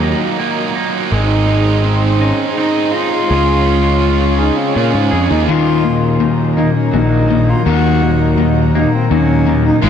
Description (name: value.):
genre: post-rock.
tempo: 83 BPM.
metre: 3/4.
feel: straight.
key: Eb dorian.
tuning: A4 = 440 Hz.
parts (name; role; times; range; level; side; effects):
rich cello; melody; 0.0-9.9 s; Gb3 to Gb4; -18 LUFS; right 1 dB; analog delay.
dark studio string section; sustained chords; 0.0-9.9 s; Gb3 to Db6; -25 LUFS; left 2 dB; none.
twelve-string electric guitar; arpeggios; 0.0-9.9 s; Eb2 to Ab4; -20 LUFS; left 2 dB; analog delay.
tight distorted guitar; riff; 0.0-5.5, 9.8-9.9 s; Eb2 to Ab4; -20 LUFS; right 11 dB; distortion.
fuzz picked electric bass; bass; 0.0-9.9 s; Ab1 to Bb2; -15 LUFS; right 1 dB; overdrive.
distorted electric guitar; riff; 5.5-9.9 s; Eb2 to Ab3; -16 LUFS; left 8 dB; distortion.
room: moderate huge ambient reverb, RT60 6.1 s.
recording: dreamy mix soaked in reverb.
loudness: -11 LUFS.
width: side -8 dB against mid.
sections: 0.0-5.5 A section; 5.5-9.9 B section.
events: build-up 5.5-9.9.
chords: 0.0 Ebm; 1.1 Ab; 3.3 Db; 5.5 Ebm.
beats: 0.39 | 1.12 1.85 2.58 | 3.31 4.03 4.76 | 5.49 6.21 6.94 | 7.66 8.39 9.11 | 9.83.